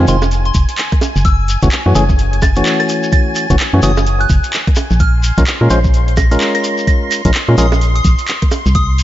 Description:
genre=UK garage, two-step garage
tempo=128 BPM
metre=4/4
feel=swing 61% on 16ths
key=unclear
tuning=A4 = 442 Hz
part: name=soft string machine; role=sustained chords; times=0.0-9.0 s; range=Ab5 to C6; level=-26 LUFS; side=equal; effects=ensemble chorus, sidechain pumping
part: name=percussive organ stab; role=stabs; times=0.0-7.7 s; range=Eb3 to C5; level=-17 LUFS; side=left 1 dB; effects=chorus, ping-pong delay
part: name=organ-like FM bass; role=bass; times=0.0-9.0 s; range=F1 to Bb2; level=-13 LUFS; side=equal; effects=none
part: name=soft synth bell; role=melody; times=0.1-8.9 s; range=C6 to Bb6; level=-21 LUFS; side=right 1 dB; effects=chorus, phaser, ping-pong delay
part: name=garage drum kit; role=drums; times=0.1-9.0 s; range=bongos, handclaps, hi-hat, rim click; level=-21 LUFS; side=right 2 dB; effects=overdrive, studio reverb
part: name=shekere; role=percussion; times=0.1-9.0 s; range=none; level=-26 LUFS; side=left 3 dB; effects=none
part: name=electronic kick drum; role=drums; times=0.5-8.9 s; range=none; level=-13 LUFS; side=equal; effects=overdrive, studio reverb
room=light reverb, digital ambience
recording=dark, warm production, nothing above 7.6 kHz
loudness=-11 LUFS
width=side -14 dB against mid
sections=0.0-9.0 A section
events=none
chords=0.0 Fm7; 1.0 Gbm7; 4.8 Bbm7

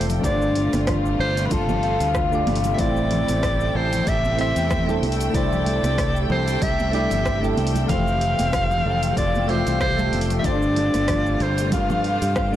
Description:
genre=sunset chillout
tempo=94 BPM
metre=4/4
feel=swing 56% on 16ths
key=unclear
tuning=A4 = 441 Hz
part: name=breathy soprano saxophone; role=melody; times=0.0-12.6 s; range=A4 to F5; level=-25 LUFS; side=equal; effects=digital delay
part: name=soft electric-piano-like synth keys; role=accompaniment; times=0.0-12.6 s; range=F3 to F5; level=-28 LUFS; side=right 1 dB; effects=chorus, tremolo, auto-pan, digital delay
part: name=clear symphonic string section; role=sustained chords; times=0.0-12.6 s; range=C3 to G5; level=-30 LUFS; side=right 1 dB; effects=none
part: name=concert harp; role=arpeggios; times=0.0-12.6 s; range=E3 to F5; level=-27 LUFS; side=left 4 dB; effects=digital delay
part: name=fingered electric bass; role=bass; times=0.0-12.6 s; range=F1 to G2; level=-24 LUFS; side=equal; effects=none
part: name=deep house drum kit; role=drums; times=0.0-12.6 s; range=congas, hi-hat, rim click, shaker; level=-30 LUFS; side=left 2 dB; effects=overdrive, studio reverb
part: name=electronic kick drum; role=drums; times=0.2-12.5 s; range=none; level=-28 LUFS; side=equal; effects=overdrive, studio reverb
part: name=congas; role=percussion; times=0.6-12.0 s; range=none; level=-30 LUFS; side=right 3 dB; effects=none
part: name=twinkling granular texture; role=texture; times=3.5-12.6 s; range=G4 to E6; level=-36 LUFS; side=equal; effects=built-in reverb
room=light reverb, small room ambience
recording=blown-out, overdriven recording, overdrive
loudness=-19 LUFS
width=side -12 dB against mid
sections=0.0-12.6 A section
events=none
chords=0.2 G9sus4; 2.8 Am7; 5.0 C6; 7.9 Fmaj7; 10.4 G9sus4

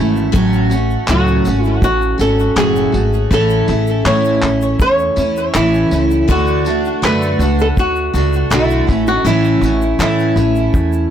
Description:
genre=acoustic pop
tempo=81 BPM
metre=4/4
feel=straight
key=A major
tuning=A4 = 440 Hz
part: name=picked steel-string acoustic guitar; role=accompaniment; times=0.0-11.1 s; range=A2 to F#4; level=-16 LUFS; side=right 1 dB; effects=double-tracked left and right
part: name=upright bass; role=bass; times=0.0-11.0 s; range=F#1 to A2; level=-18 LUFS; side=equal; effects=none
part: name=egg shaker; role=percussion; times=0.2-11.1 s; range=none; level=-42 LUFS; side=left 6 dB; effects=none
part: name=cloth-damped thuddy drum kit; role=drums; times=0.3-10.9 s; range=handclaps, kick drum, tambourine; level=-18 LUFS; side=equal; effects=none
part: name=flamenco guitar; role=melody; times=1.1-11.1 s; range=E4 to C#5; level=-17 LUFS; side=equal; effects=digital delay
room=moderate studio ambience, RT60 0.5 s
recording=blown-out, overdriven recording, overdrive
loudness=-12 LUFS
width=side -9 dB against mid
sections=0.0-11.1 A section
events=none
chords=0.3 F#m; 3.3 A; 6.3 D; 8.9 A

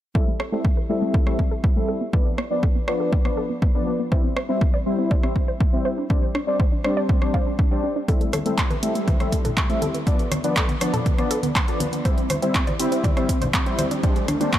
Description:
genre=progressive house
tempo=121 BPM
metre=4/4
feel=straight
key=A minor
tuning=A4 = 440 Hz
part: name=soft supersaw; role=stabs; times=0.1-14.5 s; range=F3 to E5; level=-25 LUFS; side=left 1 dB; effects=sidechain pumping, low-pass filter, tape echo
part: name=electronic kick drum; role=drums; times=0.1-14.6 s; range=none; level=-21 LUFS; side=equal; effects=overdrive
part: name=wide unison pluck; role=arpeggios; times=0.2-14.6 s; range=A3 to F5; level=-28 LUFS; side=right 1 dB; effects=sidechain pumping, tape echo
part: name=deep house drum kit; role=drums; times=0.4-14.6 s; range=handclaps, hi-hat, rim click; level=-28 LUFS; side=right 1 dB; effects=overdrive
part: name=congas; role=percussion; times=8.3-14.4 s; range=none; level=-30 LUFS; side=left 1 dB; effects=sidechain pumping on perc
part: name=riser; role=sound effects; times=12.9-14.6 s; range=none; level=-32 LUFS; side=right 1 dB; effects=none
room=little or no reverb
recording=none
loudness=-19 LUFS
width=side -12 dB against mid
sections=0.1-14.6 A section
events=filter sweep on synth pluck 0.1-14.6; riser 12.9-14.6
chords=0.1 Am7; 2.1 Bdim; 4.1 C; 6.1 Gsus4; 8.1 Am7; 10.1 Bdim; 12.1 C; 14.0 Gsus4

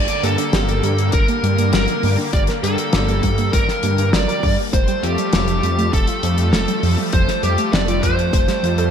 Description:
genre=synthwave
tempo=100 BPM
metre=4/4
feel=straight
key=G minor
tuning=A4 = 440 Hz
part: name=smooth overdriven lead guitar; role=melody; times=0.0-8.9 s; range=G4 to D5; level=-22 LUFS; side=right 1 dB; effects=digital delay
part: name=lush unison pad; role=sustained chords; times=0.0-8.9 s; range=D3 to Bb3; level=-25 LUFS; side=left 1 dB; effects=chorus, sidechain pumping
part: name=wide detuned saw bass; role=bass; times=0.0-8.9 s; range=F1 to G2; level=-20 LUFS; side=equal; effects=chorus
part: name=damped 70s drum kit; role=drums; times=0.1-8.9 s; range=hi-hat, snare drum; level=-23 LUFS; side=left 1 dB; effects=studio reverb, gated reverb
part: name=warbly dusty pluck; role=arpeggios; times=0.2-8.9 s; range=F3 to Bb4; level=-26 LUFS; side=right 3 dB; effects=chorus, digital delay
part: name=electronic kick drum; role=drums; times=1.1-8.5 s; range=none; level=-19 LUFS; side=equal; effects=studio reverb
room=light reverb, studio ambience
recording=bright 1980s-style digital production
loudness=-15 LUFS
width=side -8 dB against mid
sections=0.0-8.9 A section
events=none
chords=0.0 Gm; 4.7 Fadd9

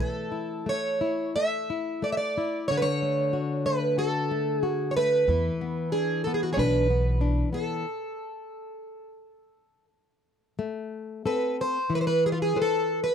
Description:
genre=fado-style ballad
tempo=91 BPM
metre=4/4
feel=rubato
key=A major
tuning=A4 = 438 Hz
part: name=picked plugged-in twelve-string acoustic guitar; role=melody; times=0.0-13.1 s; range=F4 to E5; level=-26 LUFS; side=right 2 dB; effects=none
part: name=flamenco guitar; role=accompaniment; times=0.0-13.1 s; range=D3 to C5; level=-29 LUFS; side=left 5 dB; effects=none
part: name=upright bass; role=bass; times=5.3-7.4 s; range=B1 to E2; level=-26 LUFS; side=right 1 dB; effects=none
room=light reverb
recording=dry, close 1970s-style studio recording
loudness=-24 LUFS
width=side -8 dB against mid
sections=0.0-10.6 A section; 10.6-13.1 B section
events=stop 7.9-10.6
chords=0.0 A; 2.7 Dmaj7; 5.3 E5; 7.9 N.C.; 10.6 Amadd9

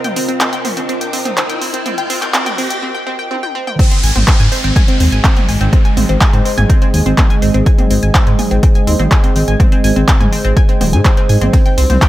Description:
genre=melodic techno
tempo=124 BPM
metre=4/4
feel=straight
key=unclear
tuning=A4 = 438 Hz
part: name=dark analog pad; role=sustained chords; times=0.0-12.1 s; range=C3 to Eb5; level=-20 LUFS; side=right 2 dB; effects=chorus, phaser, sidechain pumping
part: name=analog pluck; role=arpeggios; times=0.0-12.1 s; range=C4 to Ab6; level=-20 LUFS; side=equal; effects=chorus, phaser, cassette tape, sidechain pumping, dub echo
part: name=deep house drum kit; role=drums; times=0.0-12.1 s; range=handclaps, hi-hat, ride cymbal, toms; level=-19 LUFS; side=equal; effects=overdrive, small room ambience
part: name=riser and downlifter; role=sound effects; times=0.0-7.7 s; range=none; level=-24 LUFS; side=equal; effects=none
part: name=ethereal airy pad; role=texture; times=0.0-2.8, 11.5-12.1 s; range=C4 to Eb5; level=-27 LUFS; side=left 1 dB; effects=ensemble chorus, built-in reverb, sidechain pumping
part: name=electronic kick drum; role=drums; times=3.8-12.1 s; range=none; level=-11 LUFS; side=equal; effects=overdrive, small room ambience
part: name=swelling detuned saw bass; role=bass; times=4.0-12.0 s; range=Eb1 to Ab2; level=-13 LUFS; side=equal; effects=sidechain pumping
room=digital ambience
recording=high-pass filter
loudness=-10 LUFS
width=side -15 dB against mid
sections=0.0-3.8 A section; 3.8-12.1 B section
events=build-up 0.0-3.8; riser 0.0-2.8; filter sweep on analog synth pad 0.0-3.8; break 2.8-3.8; drum fill 3.3-3.8; drop 3.8-12.1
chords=0.0 Cm; 3.8 Ab; 11.5 Cm

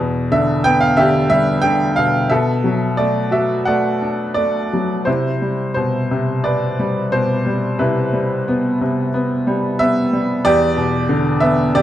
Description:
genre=classical, lyrical solo piano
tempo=88 BPM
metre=4/4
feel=uneven beats, rubato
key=unclear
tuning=A4 = 440 Hz
part: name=bright baby grand piano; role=solo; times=0.0-11.8 s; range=E2 to G5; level=-15 LUFS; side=equal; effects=none
room=moderate recital hall reverb, RT60 1.7 s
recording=dark, warm production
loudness=-15 LUFS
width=side -12 dB against mid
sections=0.0-11.8 A section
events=none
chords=0.0 Em7; 2.3 Bm7; 5.1 Cmaj7; 10.4 Em7

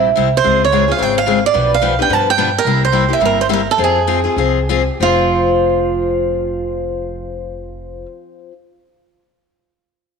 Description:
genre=acoustic string swing (jazz manouche)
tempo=186-218 BPM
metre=4/4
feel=swing 58% on 8ths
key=F minor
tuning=A4 = 440 Hz
part: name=picked swing-style acoustic guitar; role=melody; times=0.0-8.1 s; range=F4 to A5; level=-15 LUFS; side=right 8 dB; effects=tape echo
part: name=picked steel-string acoustic guitar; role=accompaniment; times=0.0-8.5 s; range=B2 to B4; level=-18 LUFS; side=left 11 dB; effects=none
part: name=upright bass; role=bass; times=0.0-8.0 s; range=F1 to G2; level=-22 LUFS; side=equal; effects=none
room=moderate echo chamber reverb, RT60 1.8 s, small room ambience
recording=1960s-style stereo with parts hard left and right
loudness=-12 LUFS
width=side -6 dB against mid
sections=0.0-5.0 A section; 5.0-7.6 B section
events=slowing down 2.7-5.0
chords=0.5 Dbmaj7; 1.6 G7/B; 2.7 C7; 3.8 Fm

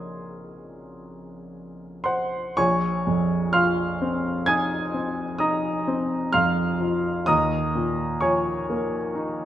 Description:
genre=classical, impressionist solo piano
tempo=56-65 BPM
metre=5/4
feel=rubato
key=Bb minor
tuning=A4 = 440 Hz
part: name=clear grand piano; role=solo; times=0.0-9.5 s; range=Bb1 to Ab6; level=-22 LUFS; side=equal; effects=none
room=moderate recital hall reverb, RT60 1.5 s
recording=none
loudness=-21 LUFS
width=side -12 dB against mid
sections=0.0-2.6 A section; 2.6-9.5 A section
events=none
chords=0.0 Bbm11; 7.3 Ebsus2

